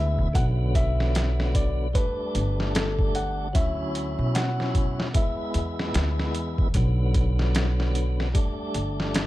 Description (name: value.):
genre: trip hop.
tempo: 75 BPM.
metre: 4/4.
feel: swing 59% on 16ths.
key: B minor.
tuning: A4 = 440 Hz.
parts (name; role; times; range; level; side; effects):
felt-muted upright piano; melody; 0.0-6.3 s; A4 to F#5; -32 LUFS; left 1 dB; tape echo.
tonewheel organ; accompaniment; 0.0-9.3 s; D3 to E4; -31 LUFS; equal; overdrive, fast rotary speaker, tremolo, tape echo.
upright bass; bass; 0.0-9.3 s; G1 to B2; -25 LUFS; equal; none.
trip hop sampler-style drum kit; drums; 0.2-9.3 s; hi-hat, kick drum, snare drum; -26 LUFS; equal; small room ambience.
room: small room ambience.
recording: dark, warm production.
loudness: -22 LUFS.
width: side -16 dB against mid.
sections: 0.0-9.3 A section.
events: none.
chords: 0.3 Bm; 1.9 Gsus2; 3.5 Dmaj7; 5.1 E; 6.7 Bm; 8.3 Gsus2.